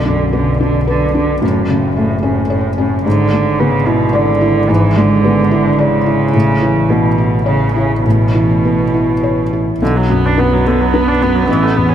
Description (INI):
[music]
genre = neoclassical piano and strings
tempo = 109 BPM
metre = 3/4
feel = rubato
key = B dorian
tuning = A4 = 439 Hz
[part]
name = muted cello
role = second line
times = 0.0-11.9 s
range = A2 to B3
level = -16 LUFS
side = right 3 dB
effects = none
[part]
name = felt-muted upright piano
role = accompaniment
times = 0.0-11.9 s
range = A1 to D5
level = -14 LUFS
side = left 1 dB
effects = none
[part]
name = muted double bass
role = bass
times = 0.0-11.9 s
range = F#1 to B1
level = -20 LUFS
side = equal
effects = none
[part]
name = muted viola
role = accompaniment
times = 9.8-11.9 s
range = D3 to D4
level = -16 LUFS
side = right 3 dB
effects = none
[sound]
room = wet cathedral reverb, RT60 5.3 s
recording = in a vast, echoing space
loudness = -11 LUFS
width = side -10 dB against mid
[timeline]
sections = 0.0-9.8 A section; 9.8-11.9 A section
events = none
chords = 0.0 Bm; 1.4 F#m; 3.1 E7/G#; 6.3 Aadd9; 9.8 Bm